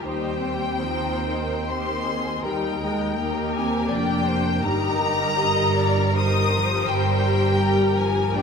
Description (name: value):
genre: classical, slow romantic movement for string orchestra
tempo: 68-84 BPM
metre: 3/4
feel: rubato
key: unclear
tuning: A4 = 439 Hz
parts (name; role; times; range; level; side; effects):
- rich studio violin section; melody; 0.0-8.4 s; G5 to Eb6; -26 LUFS; left 4 dB; none
- rich studio violin section; second line; 0.0-8.4 s; Eb4 to Eb5; -28 LUFS; left 1 dB; none
- rich studio viola section; accompaniment; 0.0-8.4 s; Eb3 to G4; -25 LUFS; left 2 dB; none
- clear studio cello section; bass; 0.0-8.4 s; Eb2 to Bb2; -29 LUFS; right 3 dB; none
- rich studio double bass section; bass; 0.0-8.4 s; F1 to Eb2; -27 LUFS; right 3 dB; none
room: wet scoring stage reverb, RT60 1.8 s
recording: minimal, uncompressed stereo recording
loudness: -20 LUFS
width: side -6 dB against mid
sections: 0.0-8.4 A section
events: none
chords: 0.0 Cm/Eb; 2.4 Eb; 4.6 Eb/G; 6.9 Gm